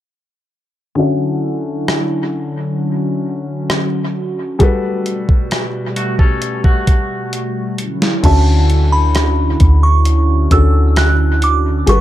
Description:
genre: contemporary R&B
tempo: 66 BPM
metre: 4/4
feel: straight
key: D major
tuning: A4 = 441 Hz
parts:
  - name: felt-muted upright piano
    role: accompaniment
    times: 1.0-12.0 s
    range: D3 to E5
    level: -20 LUFS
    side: left 3 dB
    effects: low-pass filter
  - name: hollow soft pad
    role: sustained chords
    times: 1.0-12.0 s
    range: B2 to F#4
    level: -21 LUFS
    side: right 1 dB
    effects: chorus, sidechain pumping, low-pass filter
  - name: clean 12-bit digital drum machine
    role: drums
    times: 1.9-12.0 s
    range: crash cymbal, hi-hat, kick drum, rim click, snare drum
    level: -16 LUFS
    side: equal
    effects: none
  - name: twangy electric guitar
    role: arpeggios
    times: 6.0-7.7 s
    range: A3 to A4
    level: -23 LUFS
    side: equal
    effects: low-pass filter, dub echo
  - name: glassy synth bell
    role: melody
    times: 8.2-12.0 s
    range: A5 to F#6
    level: -19 LUFS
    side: right 2 dB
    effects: chorus, dub echo
  - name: soft 808-style bass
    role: bass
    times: 8.2-12.0 s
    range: G1 to D2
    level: -12 LUFS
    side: equal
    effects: none
room: little or no reverb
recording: echo-heavy mix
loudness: -13 LUFS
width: side -13 dB against mid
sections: 1.0-8.2 A section; 8.2-12.0 B section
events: filter sweep 1.0-8.2; drum fill 7.3-8.2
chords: 1.0 Dmaj9; 4.6 Gmaj9; 7.8 Dmaj9

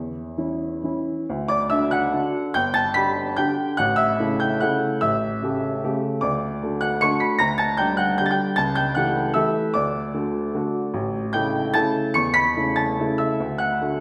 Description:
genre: classical, piano waltz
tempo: 127-159 BPM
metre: 3/4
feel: rubato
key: D major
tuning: A4 = 436 Hz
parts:
  - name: warm upright piano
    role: solo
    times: 0.0-14.0 s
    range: G1 to C#7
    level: -22 LUFS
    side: equal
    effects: none
room: wet recital hall reverb, RT60 1.3 s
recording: none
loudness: -22 LUFS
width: mono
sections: 0.0-1.3 A section; 1.3-14.0 B section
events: none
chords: 0.0 A (rootless); 1.3 D; 2.6 G; 3.8 A; 5.0 A7; 6.2 D; 7.4 Gm/D; 8.6 A7/C#; 9.8 D; 10.9 A7; 13.4 D

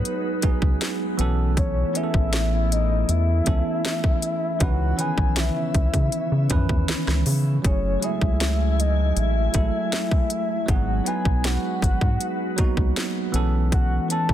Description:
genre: contemporary R&B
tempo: 79 BPM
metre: 4/4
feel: straight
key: F# dorian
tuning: A4 = 441 Hz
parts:
  - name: soft octave-layered synth lead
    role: melody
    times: 0.0-14.3 s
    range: B4 to A5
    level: -28 LUFS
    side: left 3 dB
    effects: chorus, tremolo, ping-pong delay
  - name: bell-like tine electric piano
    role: accompaniment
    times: 0.0-14.3 s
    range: D#3 to B4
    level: -28 LUFS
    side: right 6 dB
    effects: fast stereo tremolo
  - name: glassy FM pad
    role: sustained chords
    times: 0.0-14.3 s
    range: C#3 to G#5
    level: -31 LUFS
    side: left 1 dB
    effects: ensemble chorus, built-in reverb
  - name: rubbery square bass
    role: bass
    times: 0.0-14.3 s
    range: F#1 to C#3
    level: -22 LUFS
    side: equal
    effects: none
  - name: trap drum kit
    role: drums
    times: 0.1-14.3 s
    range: hi-hat, kick drum, rim click, snare drum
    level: -23 LUFS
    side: equal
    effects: none
room: little or no reverb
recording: dense, heavily limited modern master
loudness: -20 LUFS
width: side -11 dB against mid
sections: 0.0-14.3 A section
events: none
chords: 0.0 G#m7; 1.2 B9sus4; 4.6 C#m9; 7.6 F#m9; 10.7 G#m7; 13.3 B9sus4

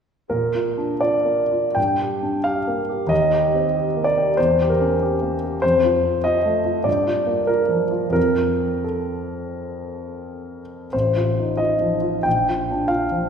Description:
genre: classical, romantic character piece for solo piano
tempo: 75-99 BPM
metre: 4/4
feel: rubato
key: Bb major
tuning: A4 = 440 Hz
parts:
  - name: warm concert grand piano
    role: solo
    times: 0.3-13.3 s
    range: A1 to G5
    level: -18 LUFS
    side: equal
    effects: none
room: wet scoring stage reverb, RT60 1.9 s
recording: recorded in a church or concert hall, lossy compression artefacts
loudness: -18 LUFS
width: side -7 dB against mid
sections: 0.3-13.3 A section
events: none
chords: 0.3 Bb; 1.8 Gm; 3.1 Cm7/Eb; 4.4 Edim7; 5.6 F; 6.9 Gm7; 8.2 F; 10.9 F7/A; 12.3 Bb

